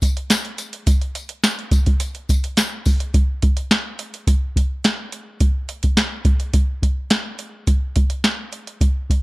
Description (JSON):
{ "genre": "indie pop", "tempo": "106 BPM", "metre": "4/4", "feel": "straight", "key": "none", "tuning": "none", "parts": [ { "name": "soft vintage rhythm box", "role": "drums", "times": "0.0-9.2 s", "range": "hi-hat, kick drum, snare drum", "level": "-17 LUFS", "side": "equal", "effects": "none" }, { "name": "tambourine", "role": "percussion", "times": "0.0-3.0 s", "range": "none", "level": "-29 LUFS", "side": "left 5 dB", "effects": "none" } ], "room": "digital ambience", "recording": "none", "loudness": "-17 LUFS", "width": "side -21 dB against mid", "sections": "0.0-3.1 A section; 3.1-9.2 B section", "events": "none", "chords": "none" }